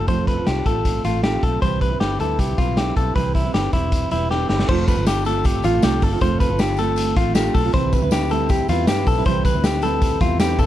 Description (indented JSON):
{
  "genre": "jangly indie pop",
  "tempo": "157 BPM",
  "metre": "4/4",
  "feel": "straight",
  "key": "unclear",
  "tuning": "A4 = 440 Hz",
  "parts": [
    { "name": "fingerpicked steel-string acoustic guitar", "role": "accompaniment", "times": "0.0-10.7 s", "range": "C3 to B4", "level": "-24 LUFS", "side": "right 8 dB", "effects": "none" },
    { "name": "direct-recorded clean electric guitar", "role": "arpeggios", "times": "0.0-10.7 s", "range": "E4 to C5", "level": "-23 LUFS", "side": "left 4 dB", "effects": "analog delay" },
    { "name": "vintage muted fingered electric bass", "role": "bass", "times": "0.0-10.7 s", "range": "E1 to G2", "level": "-24 LUFS", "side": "equal", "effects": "none" },
    { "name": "raw garage drum kit", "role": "drums", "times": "0.1-10.7 s", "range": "crash cymbal, hi-hat, kick drum, snare drum", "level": "-21 LUFS", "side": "equal", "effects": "none" },
    { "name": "tambourine", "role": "percussion", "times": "4.9-10.7 s", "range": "none", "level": "-40 LUFS", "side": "left 16 dB", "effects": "none" }
  ],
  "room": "moderate club reverb, RT60 0.8 s",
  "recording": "dark, warm production",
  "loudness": "-17 LUFS",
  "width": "side -12 dB against mid",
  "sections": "0.0-4.7 A section; 4.7-10.7 B section",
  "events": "drum fill 4.3-4.7",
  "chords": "0.0 F; 1.6 Cmaj7; 4.7 F; 7.7 Cmaj7"
}